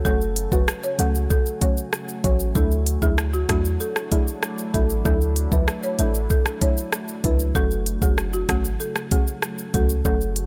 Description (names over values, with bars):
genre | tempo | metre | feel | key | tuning
dancehall | 96 BPM | 4/4 | straight | F# minor | A4 = 438 Hz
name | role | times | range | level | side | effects
deep dark ambient pad | sustained chords | 0.0-10.5 s | C#3 to G#5 | -36 LUFS | equal | chorus, built-in reverb, sidechain pumping
folk marimba with medium mallets | melody | 0.1-10.3 s | F#4 to C#5 | -31 LUFS | equal | none
deep mellow chord stab | accompaniment | 0.1-10.2 s | F#3 to F#4 | -31 LUFS | equal | chorus
clean 808-style bass | bass | 0.1-10.5 s | F#1 to E2 | -26 LUFS | equal | none
island pop drum kit | drums | 0.1-10.5 s | hi-hat, kick drum, rim click, shaker | -25 LUFS | equal | none
room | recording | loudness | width
digital ambience | none | -22 LUFS | mono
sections
0.0-10.5 A section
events
none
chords
0.0 F#m; 2.6 Dadd9; 7.6 F#m